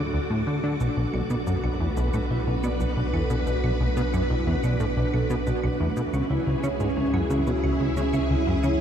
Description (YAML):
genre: ambient, sequencer-driven space music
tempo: 90 BPM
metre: 4/4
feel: straight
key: unclear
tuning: A4 = 440 Hz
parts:
  - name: string machine, full ensemble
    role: sustained chords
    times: 0.0-8.8 s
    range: E4 to D6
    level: -30 LUFS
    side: equal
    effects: ensemble chorus
  - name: vibraphone with medium mallets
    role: arpeggios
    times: 0.0-8.8 s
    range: G#3 to D5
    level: -30 LUFS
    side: right 2 dB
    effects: auto-pan, tape echo
  - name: warm sub bass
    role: bass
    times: 0.0-8.8 s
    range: B1 to D2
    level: -30 LUFS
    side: equal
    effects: none
  - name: plucky analog bass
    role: riff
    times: 0.1-8.7 s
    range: B1 to D3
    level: -25 LUFS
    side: equal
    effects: cassette tape, tape echo
  - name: shaker and claves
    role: percussion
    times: 0.8-8.8 s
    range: none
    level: -46 LUFS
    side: right 5 dB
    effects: tape echo
room: moderate huge ambient reverb, RT60 8.6 s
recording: in a vast, echoing space, cassette tape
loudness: -22 LUFS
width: side -9 dB against mid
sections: 0.0-8.8 A section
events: none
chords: 0.0 D; 0.8 Bm; 6.1 C#m7